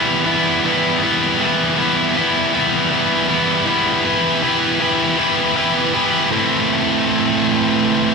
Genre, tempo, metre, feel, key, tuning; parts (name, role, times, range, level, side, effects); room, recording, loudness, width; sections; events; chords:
rock; 53 BPM (dotted quarters); 6/8; straight; A4 = 440 Hz
heavy high-gain guitar; solo; 0.0-8.1 s; A2 to B4; -14 LUFS; equal; distortion
moderate large studio reverb, RT60 0.8 s; band playing live in one room; -14 LUFS; side -4 dB against mid
0.0-4.0 A section; 4.0-6.3 B section; 6.3-8.1 C section
0.0 Em; 6.3 Am